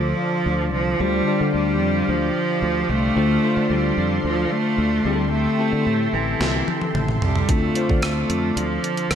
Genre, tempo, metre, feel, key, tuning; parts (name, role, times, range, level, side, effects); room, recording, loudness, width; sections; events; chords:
1980s-style pop; 111 BPM; 4/4; straight; D minor; A4 = 440 Hz
rich cello; melody; 0.0-9.2 s; E3 to A3; -22 LUFS; right 2 dB; ping-pong delay
bell-like tine electric piano; accompaniment; 0.0-9.2 s; D3 to D5; -25 LUFS; left 5 dB; lush chorus
lush unison pad; sustained chords; 0.0-9.2 s; G4 to C6; -29 LUFS; right 2 dB; chorus
sustaining fretless electric bass; bass; 0.0-9.2 s; A1 to D3; -25 LUFS; right 1 dB
gated 80s digital drum machine; drums; 6.4-9.2 s; hi-hat, kick drum, rim click, snare drum, toms; -22 LUFS; right 1 dB; gated reverb, gated reverb snare
light reverb; -18 LUFS; side -8 dB against mid
0.0-9.2 A section
drum fill 6.4-7.5
0.0 Dm7; 1.0 G7sus4/D; 3.2 Dm7; 5.1 C6; 7.5 Dm7